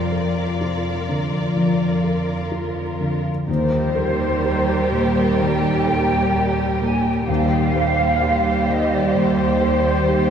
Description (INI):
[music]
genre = cinematic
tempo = 63 BPM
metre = 4/4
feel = rubato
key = Eb major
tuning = A4 = 437 Hz
[part]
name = clear symphonic violin section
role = melody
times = 0.0-10.3 s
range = Bb4 to D5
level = -30 LUFS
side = left 2 dB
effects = none
[part]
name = warm symphonic violin section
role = second line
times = 0.0-10.3 s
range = F4 to Bb4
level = -28 LUFS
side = left 2 dB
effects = none
[part]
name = felt-muted upright piano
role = accompaniment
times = 0.0-10.3 s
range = Eb2 to C5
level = -24 LUFS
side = equal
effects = none
[part]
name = clear symphonic cello section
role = bass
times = 0.0-10.3 s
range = Eb2 to F2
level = -24 LUFS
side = right 2 dB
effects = none
[part]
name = large flute ensemble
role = second line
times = 3.5-10.3 s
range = C5 to Ab5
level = -22 LUFS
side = equal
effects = none
[part]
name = clear symphonic viola section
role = accompaniment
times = 3.5-10.3 s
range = G3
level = -24 LUFS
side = right 3 dB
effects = none
[part]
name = concert harp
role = arpeggios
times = 3.5-10.3 s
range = Eb3 to C5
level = -26 LUFS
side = left 2 dB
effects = none
[sound]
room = wet cathedral reverb, RT60 6.5 s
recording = recorded in a church or concert hall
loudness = -17 LUFS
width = side -8 dB against mid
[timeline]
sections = 0.0-3.5 A section; 3.5-10.3 A section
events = none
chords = 0.0 Bb/F; 3.5 Eb6; 7.3 Cm/Eb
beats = 0.59 1.55 2.52 | 3.48 4.43 5.40 6.35 | 7.29 8.22 9.16 10.09